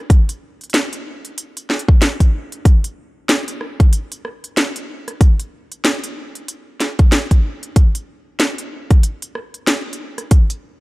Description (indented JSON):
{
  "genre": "glitch hop",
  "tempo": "94 BPM",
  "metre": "4/4",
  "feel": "swing 59% on 16ths",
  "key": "none",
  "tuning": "none",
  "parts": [
    { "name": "drum and bass drum kit", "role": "drums", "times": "0.1-10.6 s", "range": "hi-hat, rim click, snare drum", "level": "-20 LUFS", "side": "equal", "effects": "none" },
    { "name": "electronic kick drum", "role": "drums", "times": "0.1-10.5 s", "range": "none", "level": "-11 LUFS", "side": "equal", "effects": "none" }
  ],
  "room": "little or no reverb",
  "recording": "dry, gritty hardware recording, transformer saturation",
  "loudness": "-14 LUFS",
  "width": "side -22 dB against mid",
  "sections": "0.0-10.8 A section",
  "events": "none",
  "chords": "none"
}